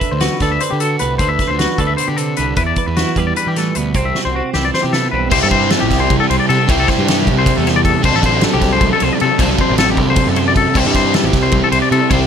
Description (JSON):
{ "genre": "math rock and midwest emo", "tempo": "308 BPM (eighths)", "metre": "7/8", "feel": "straight", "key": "C lydian", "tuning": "A4 = 440 Hz", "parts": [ { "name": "twelve-string electric guitar", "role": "accompaniment", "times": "0.0-6.7 s", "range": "E2 to B4", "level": "-22 LUFS", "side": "right 11 dB", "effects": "none" }, { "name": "twangy electric guitar", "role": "arpeggios", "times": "0.0-12.3 s", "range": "F#4 to E5", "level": "-18 LUFS", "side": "left 7 dB", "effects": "tremolo" }, { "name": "loose indie drum kit", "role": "drums", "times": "0.0-12.2 s", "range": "crash cymbal, hi-hat, kick drum, ride cymbal, snare drum", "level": "-18 LUFS", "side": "equal", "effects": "none" }, { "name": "fuzz picked electric bass", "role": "bass", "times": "0.1-12.3 s", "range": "A1 to E3", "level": "-19 LUFS", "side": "equal", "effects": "overdrive" }, { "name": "crunchy overdriven guitar", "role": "riff", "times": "5.3-12.3 s", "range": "C3 to A4", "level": "-16 LUFS", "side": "right 1 dB", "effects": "none" } ], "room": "light reverb", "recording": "none", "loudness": "-12 LUFS", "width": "side -8 dB against mid", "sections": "0.0-5.3 A section; 5.3-12.3 B section", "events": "drum fill 4.1-5.3", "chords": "0.0 D13; 2.6 Em7; 4.0 Cmaj7; 5.3 C6; 8.0 D7; 10.8 C6", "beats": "0.02 0.22 0.41 0.61 0.81 1.00 | 1.20 1.40 1.59 1.79 1.99 2.18 2.38 | 2.58 2.77 2.97 3.17 3.36 3.56 3.75 | 3.95 4.15 4.34 4.54 4.73 4.93 5.12 | 5.32 5.51 5.71 5.90 6.10 6.29 6.49 | 6.68 6.88 7.07 7.26 7.46 7.65 7.85 | 8.04 8.23 8.43 8.62 8.81 9.01 9.20 | 9.40 9.59 9.78 9.98 10.17 10.36 10.56 | 10.75 10.94 11.14 11.33 11.52 11.72 11.91 | 12.10" }